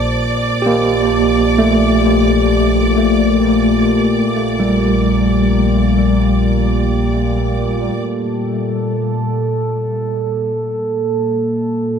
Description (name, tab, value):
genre	ambient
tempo	free time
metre	none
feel	none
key	Bb major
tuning	A4 = 440 Hz
part	overdriven tine electric piano	arpeggios	0.0-8.0 s	G3 to G4	-16 LUFS	left 1 dB	fast tremolo, ping-pong delay
part	warm sub bass	bass	0.0-7.9 s	Bb1	-20 LUFS	equal	none
part	analog drone	drone	0.0-12.0 s	Bb2 to A4	-18 LUFS	right 1 dB	chorus
part	clear studio violin section	texture	0.0-8.0 s	D5 to D6	-22 LUFS	right 1 dB	none
room	wet huge ambient reverb, RT60 7.9 s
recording	none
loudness	-13 LUFS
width	side -7 dB against mid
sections	0.0-8.0 A section; 8.0-12.0 B section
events	none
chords	0.0 Csus2/Bb; 0.6 Gmadd9/Bb; 4.3 Bb6; 8.0 N.C.